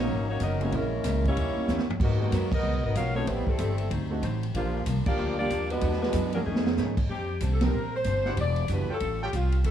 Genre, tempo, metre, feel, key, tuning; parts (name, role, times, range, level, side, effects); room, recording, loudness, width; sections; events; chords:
jazz, big band swing; 188 BPM; 4/4; swing 63% on 8ths; A4 = 441 Hz
warm saxophone section; melody; 0.0-9.7 s; Eb3 to F5; -31 LUFS; left 3 dB
bright trombone section; second line; 0.0-7.0 s; Bb2 to G#4; -36 LUFS; right 6 dB
upright bass; bass; 0.0-9.7 s; E1 to Ab2; -28 LUFS; equal
archtop guitar, miked and amplified; accompaniment; 0.1-9.7 s; F2 to Bb4; -38 LUFS; left 3 dB
swinging big-band drum kit; drums; 0.4-9.7 s; crash cymbal, hi-hat, kick drum, ride cymbal, snare drum, toms; -31 LUFS; right 1 dB
clear concert grand piano; accompaniment; 0.6-8.9 s; F3 to Eb5; -35 LUFS; right 5 dB
clear trumpet section; stabs; 8.2-9.3 s; E4 to G5; -38 LUFS; right 2 dB
light reverb, small room ambience; cassette tape; -25 LUFS; side -10 dB against mid
0.0-7.1 A section; 7.1-9.7 B section
drum fill 1.7-2.0, 6.5-6.8; band accent 2.5, 5.0, 7.6
0.0 Bmaj9#11; 0.7 Bbm7b5; 1.4 Eb7b9; 2.0 Abm9; 3.3 Am7; 3.9 D7b9; 4.5 Gm7; 5.8 E9; 6.5 F7alt; 7.1 Bb69; 8.4 Em9; 9.0 A7alt